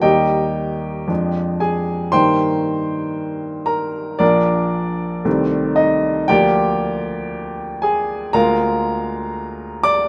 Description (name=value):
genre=classical, romantic character piece for solo piano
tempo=58 BPM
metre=2/4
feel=rubato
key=Eb major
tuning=A4 = 440 Hz
part: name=clear baby grand piano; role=solo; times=0.0-10.1 s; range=Bb1 to D6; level=-19 LUFS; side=equal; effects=none
room=light reverb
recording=none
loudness=-19 LUFS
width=mono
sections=0.0-10.1 A section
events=none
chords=0.0 Eb; 1.1 Ddim/F; 2.1 Eb/G; 4.2 Bb; 5.3 Adim/C; 6.3 Bb/D; 8.3 Bb7/D